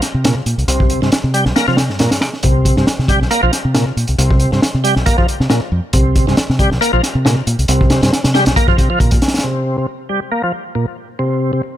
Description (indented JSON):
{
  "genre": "breakbeat, breaks",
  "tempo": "137 BPM",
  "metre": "4/4",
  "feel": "swing 55% on 16ths",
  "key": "unclear",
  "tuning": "A4 = 443 Hz",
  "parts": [
    { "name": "crunchy breakbeat drum kit", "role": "drums", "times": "0.0-9.4 s", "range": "hi-hat, kick drum, snare drum", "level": "-15 LUFS", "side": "equal", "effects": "none" },
    { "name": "fingered electric bass", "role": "bass", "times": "0.1-9.2 s", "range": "Bb1 to C3", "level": "-16 LUFS", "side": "equal", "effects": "none" },
    { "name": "bright tonewheel organ", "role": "riff", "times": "0.2-11.6 s", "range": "Bb2 to Bb3", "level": "-17 LUFS", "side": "equal", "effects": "overdrive, chorus vibrato, slow rotary speaker, low-pass filter, ping-pong delay" },
    { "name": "dark analog pad", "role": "sustained chords", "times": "10.7-11.8 s", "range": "none", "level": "barely audible", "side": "none", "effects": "none" }
  ],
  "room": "small room ambience",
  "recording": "none",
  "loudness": "-12 LUFS",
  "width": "side -12 dB against mid",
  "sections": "0.0-9.4 A section; 9.4-11.8 B section",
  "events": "none",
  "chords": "0.0 C5; 9.4 Cm",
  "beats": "0.24 | 0.68 1.12 1.56 2.00 | 2.43 2.87 3.31 3.75 | 4.18 4.62 5.06 5.50 | 5.94 6.38 6.81 7.25 | 7.69 8.13 8.56 9.00 | 9.44 9.88 10.32 10.75 | 11.19 11.63"
}